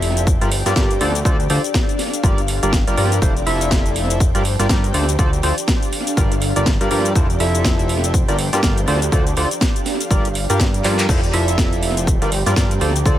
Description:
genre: piano house.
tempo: 122 BPM.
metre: 4/4.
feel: swing 59% on 16ths.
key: G dorian.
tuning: A4 = 436 Hz.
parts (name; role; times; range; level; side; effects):
percussive organ stab; riff; 0.0-13.2 s; D3 to E5; -22 LUFS; equal; analog chorus, cassette tape, sidechain pumping, tape echo.
fat analog bass; bass; 0.0-13.2 s; F1 to G2; -20 LUFS; equal; sidechain pumping.
house drum kit; drums; 0.0-13.2 s; crash cymbal, handclaps, hi-hat, shaker, snare drum; -23 LUFS; equal; tape echo.
ethereal airy pad; texture; 0.0-13.2 s; F3 to G5; -26 LUFS; equal; ensemble chorus, built-in reverb, sidechain pumping.
electronic kick drum; drums; 0.3-13.2 s; none; -18 LUFS; equal; none.
room: digital ambience.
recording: echo-heavy mix.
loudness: -15 LUFS.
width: side -12 dB against mid.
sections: 0.0-13.2 A section.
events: drum fill 10.8.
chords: 0.3 Gm7; 1.0 Dm7; 2.2 Gm7; 3.2 Fmaj7; 4.2 Gm7; 4.9 Dm7; 6.2 Gm7; 7.2 Fmaj7; 8.1 Gm7; 8.9 Dm7; 10.1 Gm7; 11.1 Fmaj7; 12.1 Gm7.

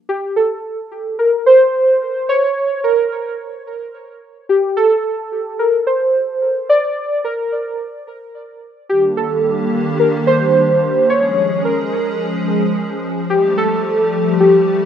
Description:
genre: IDM.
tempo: 109 BPM.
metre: 4/4.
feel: straight.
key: Eb lydian.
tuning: A4 = 440 Hz.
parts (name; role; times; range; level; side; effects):
warbly lo-fi synth keys; melody; 0.1-14.9 s; G4 to D5; -14 LUFS; equal; chorus, vintage 12-bit sampler grit, plate reverb, digital delay.
hollow soft pad; sustained chords; 8.9-14.9 s; Eb3 to Ab4; -18 LUFS; left 1 dB; ensemble chorus.
room: wet studio ambience, RT60 0.5 s.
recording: rough home demo mix.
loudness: -13 LUFS.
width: side -9 dB against mid.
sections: 0.1-14.9 A section.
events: none.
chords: 0.1 N.C.; 8.9 Ebmaj7; 11.1 Db; 13.3 Fadd9.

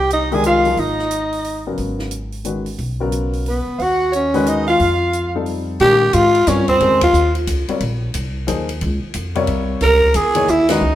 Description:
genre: modal jazz.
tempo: 179 BPM.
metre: 3/4.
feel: swing 63% on 8ths.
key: Bb dorian from 5.8 s.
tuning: A4 = 440 Hz.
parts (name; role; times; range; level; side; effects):
growling tenor saxophone; melody; 0.0-7.3, 9.8-10.9 s; Cb4 to Bb4; -16 LUFS; equal; none.
breathy alto saxophone; second line; 0.0-7.3, 9.8-10.9 s; C4 to Ab5; -21 LUFS; right 3 dB; none.
upright bass; bass; 0.0-10.9 s; Ab1 to Bb2; -22 LUFS; equal; none.
compact cocktail drum kit; drums; 0.1-10.7 s; hi-hat, kick drum, ride cymbal, snare drum; -29 LUFS; equal; none.
warm baby grand piano; accompaniment; 0.3-10.8 s; C3 to Db5; -22 LUFS; left 3 dB; none.
room: wet large studio reverb, RT60 1.4 s.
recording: minimal, uncompressed stereo recording.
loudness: -15 LUFS.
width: side -12 dB against mid.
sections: 0.0-5.8 A section; 5.8-10.9 B section.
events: band accent 7.0, 10.6.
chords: 0.0 Fm9; 1.8 Abm9; 4.8 F7; 5.8 Bbm9; 9.8 Dbmadd9.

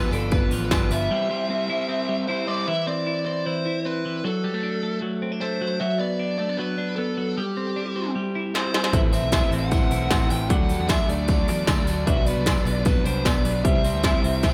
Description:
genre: jangly indie pop.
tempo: 153 BPM.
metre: 4/4.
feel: straight.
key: unclear.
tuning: A4 = 440 Hz.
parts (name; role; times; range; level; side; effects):
fuzz lead guitar; melody; 0.0-14.5 s; G4 to G5; -30 LUFS; equal; distortion.
raw garage guitar; accompaniment; 0.0-2.7, 8.9-14.5 s; A2 to C5; -34 LUFS; equal; overdrive, slapback echo.
twelve-string electric guitar; arpeggios; 0.0-14.5 s; E3 to E4; -29 LUFS; equal; none.
vintage muted picked electric bass; bass; 0.1-1.1, 8.9-14.5 s; G1 to E2; -29 LUFS; equal; none.
industrial drum kit; drums; 0.1-1.0, 8.6-14.5 s; hi-hat, kick drum, snare drum; -25 LUFS; equal; none.
tambourine; percussion; 0.1-1.0, 8.9-14.5 s; none; -44 LUFS; equal; none.
reed electric piano; accompaniment; 8.9-14.5 s; C4 to E5; -38 LUFS; equal; none.
room: moderate lush hall reverb, RT60 2.4 s.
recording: big arena sound.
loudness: -23 LUFS.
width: mono.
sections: 0.0-2.7 A section; 2.7-14.5 B section.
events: break 1.1-2.7; drum fill 8.5-8.9.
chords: 0.0 G7; 1.1 C; 2.7 Cmaj9/E; 4.2 D; 5.8 Bm; 7.4 C; 8.9 Am; 10.5 D; 12.1 Bm; 13.6 C.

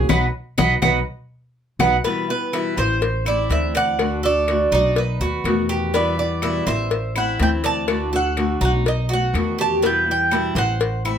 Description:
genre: latin, Cuban son and guajira.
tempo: 123 BPM.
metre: 4/4.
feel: straight.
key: E minor.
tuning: A4 = 440 Hz.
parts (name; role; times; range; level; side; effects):
flamenco guitar; accompaniment; 0.0-11.2 s; B2 to F#4; -24 LUFS; left 3 dB; none.
Cuban tres; arpeggios; 0.0-11.2 s; B3 to F#5; -24 LUFS; right 2 dB; none.
upright bass; bass; 0.0-11.2 s; A1 to E2; -24 LUFS; equal; none.
bongos and cowbell; percussion; 0.1-11.1 s; none; -24 LUFS; left 6 dB; none.
claves; percussion; 0.1-11.2 s; none; -29 LUFS; left 5 dB; none.
Cuban tres; melody; 2.0-11.2 s; B4 to A5; -22 LUFS; right 3 dB; none.
room: light reverb.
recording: close, detailed microphones.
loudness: -18 LUFS.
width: side -8 dB against mid.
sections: 0.0-2.0 A section; 2.0-11.2 B section.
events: Cuban tres solo 0.0-2.0; band accent 0.1-2.0; drum fill 1.8.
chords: 0.1 B; 2.0 Em; 3.0 Am; 4.0 D; 5.0 B7; 5.9 Em; 6.9 Am; 7.9 D; 8.9 B7; 9.8 Em.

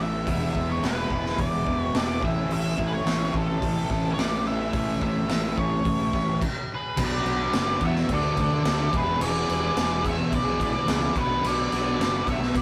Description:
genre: classic rock.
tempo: 108 BPM.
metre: 4/4.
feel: straight.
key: unclear.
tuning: A4 = 441 Hz.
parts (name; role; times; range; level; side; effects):
octave-fuzz lead guitar; melody; 0.0-12.6 s; A4 to E5; -31 LUFS; equal; wah, distortion.
raw garage guitar; riff; 0.0-12.6 s; E2 to E4; -38 LUFS; equal; overdrive, phaser.
sludgy distorted guitar; riff; 0.0-12.5 s; E2 to G#4; -31 LUFS; equal; overdrive.
fuzz fingered electric bass; bass; 0.0-12.6 s; E1 to B2; -32 LUFS; equal; overdrive.
raw garage drum kit; drums; 0.3-12.6 s; crash cymbal, hi-hat, kick drum, snare drum; -31 LUFS; equal; none.
octave-fuzz lead guitar; second line; 6.7-12.6 s; F#4 to C#5; -41 LUFS; equal; distortion, slapback echo.
room: moderate studio reverb, RT60 0.6 s.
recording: rough rehearsal-room recording, warm saturation.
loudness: -25 LUFS.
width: mono.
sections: 0.0-7.0 A section; 7.0-12.6 B section.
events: stop 6.4-7.0.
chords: 0.3 E; 2.2 A; 7.0 Bm; 8.1 D; 8.9 E; 11.2 Bm.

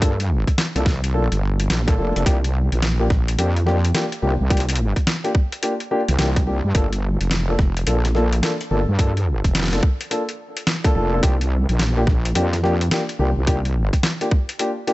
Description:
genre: glitch hop.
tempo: 107 BPM.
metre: 4/4.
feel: swing 63% on 16ths.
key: unclear.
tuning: A4 = 438 Hz.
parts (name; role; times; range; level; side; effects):
dark concert grand piano; stabs; 0.0-14.9 s; Bb3 to A4; -24 LUFS; left 1 dB; sidechain pumping, tape echo.
wobble bass; bass; 0.0-13.9 s; F1 to G2; -20 LUFS; equal; chorus, overdrive.
boom bap sampler-style drum kit; drums; 0.0-14.9 s; hi-hat, snare drum; -24 LUFS; equal; none.
electronic kick drum; drums; 0.0-14.5 s; none; -18 LUFS; equal; overdrive.
room: little or no reverb.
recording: nothing above 8.0 kHz.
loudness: -18 LUFS.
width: side -18 dB against mid.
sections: 0.0-14.9 A section.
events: none.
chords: 0.0 Gm7; 2.3 C7sus4; 6.7 Gm7; 11.2 C7sus4.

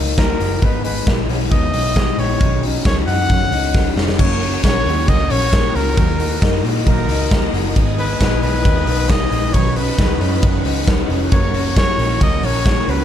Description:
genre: jangly indie pop.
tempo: 135 BPM.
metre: 4/4.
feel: straight.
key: F# major.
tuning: A4 = 439 Hz.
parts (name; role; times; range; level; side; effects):
picked steel-string acoustic guitar; accompaniment; 0.0-13.0 s; F#2 to D#4; -25 LUFS; right 6 dB; none.
electric guitar through a small old amp; arpeggios; 0.0-13.0 s; F#2 to D#4; -24 LUFS; left 7 dB; none.
vintage muted picked electric bass; bass; 0.0-13.0 s; E#1 to A#2; -21 LUFS; equal; none.
warm trumpet; melody; 0.2-13.0 s; A#4 to F#5; -23 LUFS; left 1 dB; plate reverb.
big rock drum kit; drums; 0.2-13.0 s; crash cymbal, hi-hat, kick drum, ride cymbal, snare drum; -17 LUFS; equal; none.
string machine, violins; sustained chords; 4.2-13.0 s; A#4 to D#6; -30 LUFS; equal; phaser, ensemble chorus.
room: light reverb.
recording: dark, warm production, lossy compression artefacts.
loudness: -14 LUFS.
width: side -10 dB against mid.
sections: 0.0-4.2 A section; 4.2-13.0 B section.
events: drum fill 3.7-4.2.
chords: 0.0 D#m; 0.6 G#m; 2.4 Badd9; 4.2 F#; 6.0 D#m; 7.8 G#m; 9.5 Badd9; 11.3 F#.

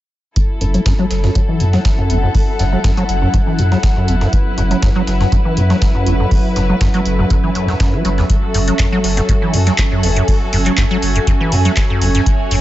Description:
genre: acid house.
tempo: 121 BPM.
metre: 4/4.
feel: swing 53% on 16ths.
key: F# minor.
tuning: A4 = 439 Hz.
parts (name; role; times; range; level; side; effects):
muted studio string section; sustained chords; 0.4-12.6 s; F#3 to C#5; -23 LUFS; equal; sidechain pumping.
breakbeat sampler-style drum kit; drums; 0.4-12.6 s; hi-hat, snare drum; -27 LUFS; right 1 dB; sidechain pumping on hats, high-pass filter on hats, high-pass filter on snare, high-pass filter on room.
electronic kick drum; drums; 0.4-12.4 s; none; -16 LUFS; equal; none.
airy breathy pad; texture; 0.7-12.6 s; C#4 to G#5; -23 LUFS; right 2 dB; chorus, phaser, sidechain pumping.
acid bass, square; riff; 0.6-12.6 s; E2 to F#3; -18 LUFS; equal; overdrive, analog chorus, sidechain pumping, tape echo.
saturated sub bass; bass; 0.6-12.6 s; F#1 to F#2; -16 LUFS; equal; tube saturation, sidechain pumping.
booming analog drum machine; drums; 8.3-12.6 s; handclaps, hi-hat; -22 LUFS; left 1 dB; none.
room: light reverb, digital ambience.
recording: nothing above 7.8 kHz.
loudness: -12 LUFS.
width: side -14 dB against mid.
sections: 0.4-12.6 A section.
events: filter sweep on acid bass 0.4-12.6; filter sweep on sub bass 0.4-12.6.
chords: 0.4 F#m7.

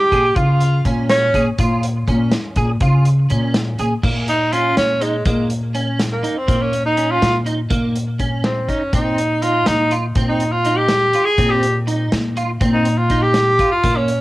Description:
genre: progressive instrumental, band music in an uneven meter.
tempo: 245 BPM (eighths).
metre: 5/8.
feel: straight.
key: Bb dorian.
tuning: A4 = 440 Hz.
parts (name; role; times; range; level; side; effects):
clear tenor saxophone; melody; 0.0-1.4, 4.3-14.2 s; Ab3 to Ab4; -17 LUFS; equal; none.
edgy alto saxophone; second line; 0.0-1.4 s; Db5 to G5; -26 LUFS; left 2 dB; cassette tape.
clean electric guitar; arpeggios; 0.1-14.1 s; Bb3 to Ab4; -24 LUFS; right 2 dB; ensemble chorus, cassette tape, analog delay.
upright bass; bass; 0.1-14.2 s; Bb2 to Db3; -19 LUFS; equal; none.
vintage drum kit; drums; 0.1-14.2 s; crash cymbal, hi-hat, kick drum, snare drum; -22 LUFS; equal; none.
room: light reverb, small room ambience.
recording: home recording on cassette.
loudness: -15 LUFS.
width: side -18 dB against mid.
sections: 0.0-4.0 A section; 4.0-14.2 B section.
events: tenor saxophone solo 4.0-14.2.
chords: 0.0 Bbm7; 4.0 Bbm; 8.9 Cm/Bb.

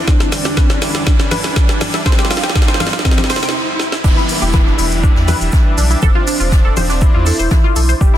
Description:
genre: melodic techno.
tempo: 121 BPM.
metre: 4/4.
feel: straight.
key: E phrygian.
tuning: A4 = 441 Hz.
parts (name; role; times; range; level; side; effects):
wide unison lead; melody; 0.0-8.2 s; C4 to G4; -24 LUFS; equal; sidechain pumping, dub echo.
sweeping resonant pad; sustained chords; 0.0-8.2 s; D3 to G5; -27 LUFS; right 3 dB; lush chorus, sidechain pumping.
brassy analog pad; stabs; 0.0-8.2 s; E3 to D4; -24 LUFS; equal; chorus, sidechain pumping, dub echo.
overtone-sweeping drone; drone; 0.0-3.5 s; E2 to D3; -41 LUFS; equal; none.
riser and downlifter; sound effects; 0.0-8.0 s; none; -24 LUFS; right 1 dB; none.
tight sequenced synth; arpeggios; 0.1-8.2 s; D4 to G5; -22 LUFS; equal; chorus, phaser, sidechain pumping, dub echo.
deep house drum kit; drums; 0.1-8.1 s; congas, crash cymbal, hi-hat, shaker, snare drum; -19 LUFS; left 1 dB; none.
electronic kick drum; drums; 0.1-8.1 s; none; -12 LUFS; equal; none.
round analog bass; bass; 4.0-8.1 s; E1 to E2; -16 LUFS; equal; sidechain pumping.
shaker and snare drum; drums; 4.0-8.2 s; none; -30 LUFS; equal; soft clipping on snare, high-pass filter on snare, sidechain pumping on perc, high-pass filter on perc, high-pass filter on room.
room: light reverb.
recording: dense, heavily limited modern master.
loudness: -11 LUFS.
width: side -12 dB against mid.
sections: 0.0-4.0 A section; 4.0-8.2 B section.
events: build-up 0.0-4.0; drum fill 0.0-3.5, 3.8; riser 0.0-4.0; filter sweep on synth arpeggio sound 0.0-4.0; filter sweep on analog synth lead 0.0-4.0; stop 3.5-4.0; drop 4.0-8.2.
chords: 0.1 Em7; 2.1 Fsus2/E; 4.0 Em7; 6.0 Dm7/E.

